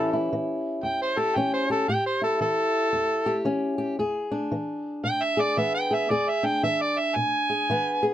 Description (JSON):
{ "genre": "acoustic country blues, solo or duo", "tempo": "114 BPM", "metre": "4/4", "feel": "swing 62% on 8ths", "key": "unclear", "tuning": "A4 = 441 Hz", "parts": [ { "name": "overdriven harmonica", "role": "melody", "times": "0.0-8.1 s", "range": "A4 to G#5", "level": "-24 LUFS", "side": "right 1 dB", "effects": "none" }, { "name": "fingerpicked old ladder-braced acoustic guitar", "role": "accompaniment", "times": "0.0-8.1 s", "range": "E2 to G#4", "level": "-26 LUFS", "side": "left 1 dB", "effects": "none" } ], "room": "light reverb", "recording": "close, detailed microphones", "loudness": "-23 LUFS", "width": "side -11 dB against mid", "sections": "0.0-8.1 A section", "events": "none", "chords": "0.0 A7; 4.0 E7" }